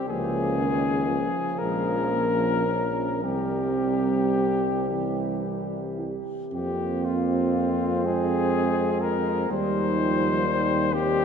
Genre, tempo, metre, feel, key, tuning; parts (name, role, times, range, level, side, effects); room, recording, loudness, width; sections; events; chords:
classical, hymn-like piece for brass band; 35-43 BPM (dotted quarters); 6/8; rubato; F minor; A4 = 441 Hz
mellow flugelhorn; melody; 0.0-11.2 s; F4 to C5; -27 LUFS; left 5 dB
warm euphonium; accompaniment; 0.0-11.2 s; F3 to Db4; -31 LUFS; left 1 dB
dark French horn section; second line; 0.1-11.2 s; C4 to G4; -30 LUFS; right 3 dB
warm trombone; accompaniment; 0.1-11.2 s; Eb3 to C4; -31 LUFS; right 5 dB
warm tuba; bass; 0.1-11.2 s; Bb1 to F2; -29 LUFS; right 1 dB
wet cathedral reverb, RT60 6.6 s; minimal, uncompressed stereo recording; -22 LUFS; side -7 dB against mid
0.0-6.5 A section; 6.5-11.2 B section
0.1 Db6; 1.6 Bbm7; 3.2 C5; 4.9 C; 6.5 Fm; 9.5 Cm/Eb